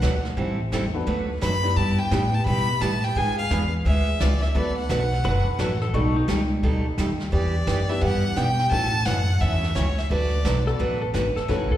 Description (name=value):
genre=country, western swing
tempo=173 BPM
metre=4/4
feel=swing 64% on 8ths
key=D major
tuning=A4 = 440 Hz
part: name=clear fiddle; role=melody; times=0.0-10.8 s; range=C#5 to B5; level=-27 LUFS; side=equal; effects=slapback echo
part: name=picked steel-string acoustic guitar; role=accompaniment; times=0.0-11.7 s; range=B2 to B4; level=-27 LUFS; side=right 3 dB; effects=slapback echo
part: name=upright bass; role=bass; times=0.0-11.7 s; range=F#1 to B2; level=-23 LUFS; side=equal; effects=none
part: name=jazz brush drum kit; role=drums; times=0.0-11.8 s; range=brushed snare drum, hi-hat, kick drum, snare drum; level=-32 LUFS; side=equal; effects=none
part: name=clear upright piano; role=accompaniment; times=0.9-11.7 s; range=A3 to D5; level=-32 LUFS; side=left 2 dB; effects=slapback echo
part: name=clean lap steel guitar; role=second line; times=5.2-6.5, 10.7-11.8 s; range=D#4 to B4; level=-28 LUFS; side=left 4 dB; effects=slapback echo
room=light reverb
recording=live gig heard through the venue's PA, recital hall reverb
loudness=-20 LUFS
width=side -12 dB against mid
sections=0.0-11.8 A section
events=none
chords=0.4 Am7; 1.1 D6; 1.8 G6; 3.2 G#dim7; 4.5 D6; 5.9 B7alt; 7.3 Em7; 8.7 A6; 10.1 D6